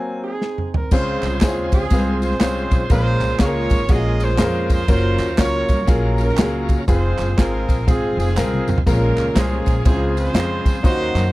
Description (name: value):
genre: uptempo gospel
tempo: 121 BPM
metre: 4/4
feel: swing 62% on 8ths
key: Db major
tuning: A4 = 440 Hz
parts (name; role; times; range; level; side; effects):
- clear baby grand piano; accompaniment; 0.0-11.3 s; Bb2 to Ab5; -22 LUFS; left 2 dB; none
- warm horn section; melody; 0.2-11.3 s; C4 to Eb5; -24 LUFS; right 3 dB; slapback echo
- natural country drum kit; drums; 0.4-11.2 s; crash cymbal, kick drum, ride cymbal, snare drum, toms; -18 LUFS; equal; none
- bright tonewheel organ; sustained chords; 0.9-11.3 s; Db3 to C5; -32 LUFS; right 1 dB; slow rotary speaker, overdrive
- upright bass; bass; 0.9-11.3 s; F1 to Gb2; -21 LUFS; equal; none
- tambourine and handclaps; percussion; 0.9-11.2 s; none; -34 LUFS; right 4 dB; none
room: little or no reverb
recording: dry, close 1970s-style studio recording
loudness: -16 LUFS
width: side -18 dB against mid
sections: 0.9-11.3 A section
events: stop 0.0-0.9; drum fill 0.4-0.9, 8.4-8.9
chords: 0.0 Ab7; 0.9 Dbmaj7; 2.9 Bbm7; 4.9 Gbmaj7; 6.9 Fm; 8.9 Bbm7; 9.8 Dbmaj7